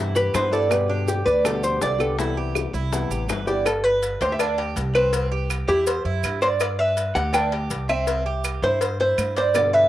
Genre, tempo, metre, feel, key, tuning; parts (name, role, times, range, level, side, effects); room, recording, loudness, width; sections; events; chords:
latin, Cuban son and guajira; 163 BPM; 4/4; straight; G major; A4 = 440 Hz
nylon-string guitar; accompaniment; 0.0-3.7, 9.5-9.9 s; B2 to G4; -29 LUFS; left 5 dB; cassette tape
Cuban tres; arpeggios; 0.0-9.9 s; C4 to D5; -27 LUFS; right 6 dB; cassette tape
upright bass; bass; 0.0-9.9 s; G1 to G2; -27 LUFS; equal
archtop guitar, miked and amplified; melody; 0.2-9.9 s; D4 to G5; -22 LUFS; left 1 dB
maracas; percussion; 0.2-9.7 s; -36 LUFS; right 8 dB
bongos and cowbell; percussion; 0.3-9.7 s; -30 LUFS; left 7 dB
claves; percussion; 0.3-9.7 s; -31 LUFS; right 8 dB
moderate spring reverb, RT60 1.9 s, small room ambience; home recording on cassette; -20 LUFS; side -14 dB against mid
0.0-3.7 A section; 3.7-9.9 B section
hollow-body jazz guitar solo 0.0-3.7
0.0 Cmaj7; 0.7 G; 2.2 Cmaj7; 3.7 G; 5.1 Cmaj7; 6.6 G; 8.1 C